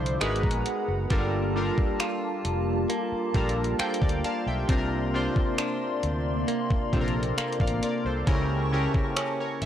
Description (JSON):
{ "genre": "contemporary R&B", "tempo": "67 BPM", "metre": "4/4", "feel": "straight", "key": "unclear", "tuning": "A4 = 440 Hz", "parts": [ { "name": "warm analog keys", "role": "accompaniment", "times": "0.0-9.7 s", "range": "C3 to A5", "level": "-30 LUFS", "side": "left 1 dB", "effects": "chorus" }, { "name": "hollow soft pad", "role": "sustained chords", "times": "0.0-9.7 s", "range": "Bb3 to D6", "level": "-31 LUFS", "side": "equal", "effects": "ensemble chorus" }, { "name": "direct-recorded clean electric guitar", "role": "arpeggios", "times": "0.0-9.7 s", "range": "C3 to F4", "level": "-33 LUFS", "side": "right 2 dB", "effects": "analog delay" }, { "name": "fretless electric bass", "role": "bass", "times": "0.0-9.7 s", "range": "F1 to D2", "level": "-30 LUFS", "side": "equal", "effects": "none" }, { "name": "detuned 8-bit digital drum machine", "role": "drums", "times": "0.1-9.7 s", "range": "finger snaps, hi-hat, kick drum", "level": "-27 LUFS", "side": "equal", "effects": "overdrive" } ], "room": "little or no reverb", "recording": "dry, gritty hardware recording, transformer saturation", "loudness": "-24 LUFS", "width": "side -10 dB against mid", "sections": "0.0-9.7 A section", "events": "synth keys fill 3.3-4.7", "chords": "0.2 G#m9; 1.1 Gm9; 4.7 C9sus4; 8.3 A7b9/C#" }